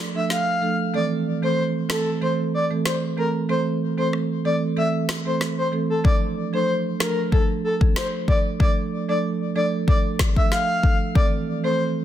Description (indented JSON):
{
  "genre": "dancehall",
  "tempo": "94 BPM",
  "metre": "4/4",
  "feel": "straight",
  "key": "D minor",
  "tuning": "A4 = 440 Hz",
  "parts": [
    { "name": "marimba with soft mallets", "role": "accompaniment", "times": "0.0-12.0 s", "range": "E3 to A4", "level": "-24 LUFS", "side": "right 4 dB", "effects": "sidechain pumping" },
    { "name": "breathy flute-like synth lead", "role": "melody", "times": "0.2-11.8 s", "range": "A4 to F5", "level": "-25 LUFS", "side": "left 2 dB", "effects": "chorus, tremolo, ping-pong delay" },
    { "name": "afro-pop drum kit", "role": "drums", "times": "0.3-11.3 s", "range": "kick drum, rim click, snare drum", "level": "-20 LUFS", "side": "left 1 dB", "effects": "none" }
  ],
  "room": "light reverb, digital ambience",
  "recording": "dense, heavily limited modern master",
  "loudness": "-20 LUFS",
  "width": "side -11 dB against mid",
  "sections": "0.0-12.0 A section",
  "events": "none",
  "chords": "0.0 Dm; 0.9 Am; 6.0 Dm; 11.2 Am"
}